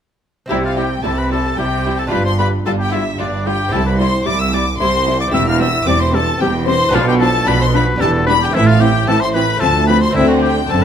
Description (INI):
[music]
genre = classical, baroque-style concerto movement with solo episodes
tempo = 112 BPM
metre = 3/4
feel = straight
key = C major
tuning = A4 = 440 Hz
[part]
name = warm oboe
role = melody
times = 0.5-10.8 s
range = D4 to F5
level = -20 LUFS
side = left 2 dB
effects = none
[part]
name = warm studio violin section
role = melody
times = 0.5-10.8 s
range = D5 to F6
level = -20 LUFS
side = left 4 dB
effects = none
[part]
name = rich chamber violin section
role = second line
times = 0.5-10.8 s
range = C4 to F4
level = -22 LUFS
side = left 4 dB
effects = none
[part]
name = lute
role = accompaniment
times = 0.5-10.8 s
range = D2 to G4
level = -25 LUFS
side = right 1 dB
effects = none
[part]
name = rich chamber viola section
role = accompaniment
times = 0.5-10.8 s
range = D3 to G3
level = -24 LUFS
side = right 2 dB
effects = none
[part]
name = rich chamber cello section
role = bass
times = 0.5-10.8 s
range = C2 to C3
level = -19 LUFS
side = right 2 dB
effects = none
[part]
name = rich chamber double bass section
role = bass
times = 0.5-10.8 s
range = E1 to D2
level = -20 LUFS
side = right 4 dB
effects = none
[sound]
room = moderate recital hall reverb, RT60 1.4 s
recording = close, detailed microphones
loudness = -13 LUFS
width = side -8 dB against mid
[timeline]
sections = 0.5-10.8 A section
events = none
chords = 0.5 C; 2.1 G5; 3.7 C; 5.3 C/E; 6.9 Bdim; 8.0 Em7; 8.5 Am; 9.6 Dm7; 10.2 D7